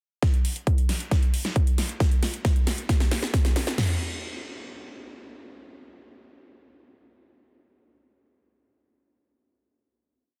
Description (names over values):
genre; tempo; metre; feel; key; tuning
trance; 135 BPM; 4/4; straight; none; none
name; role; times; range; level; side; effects
big-room dance drum kit; drums; 0.2-3.9 s; crash cymbal, kick drum, snare drum, toms; -25 LUFS; equal; none
big-room dance drum kit; drums; 0.2-3.8 s; hi-hat, snare drum; -34 LUFS; equal; sidechain pumping on hats
room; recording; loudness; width
light reverb; dense, heavily limited modern master; -25 LUFS; mono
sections
0.2-3.8 build; 3.8-7.3 final hit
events
build-up 0.2-3.8; drum fill 0.2-3.8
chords
none